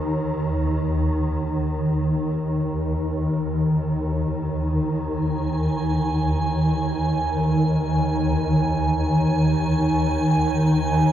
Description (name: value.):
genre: dark ambient drone.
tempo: free time.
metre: none.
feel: none.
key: unclear.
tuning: A4 = 440 Hz.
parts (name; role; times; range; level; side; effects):
swarming drone; drone; 0.0-11.1 s; Eb2 to Eb3; -20 LUFS; equal; built-in reverb.
icy glass pad; texture; 5.5-11.1 s; Ab5; -27 LUFS; right 3 dB; chorus, built-in reverb, shimmer reverb.
room: wet huge ambient reverb, RT60 8.2 s.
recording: worn, warbling old tape, cassette tape, warbly pitch drift.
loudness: -20 LUFS.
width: side -11 dB against mid.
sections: 0.0-5.1 A section; 5.1-11.1 B section.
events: none.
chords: 0.0 N.C.; 5.1 Ebsus4.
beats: free time.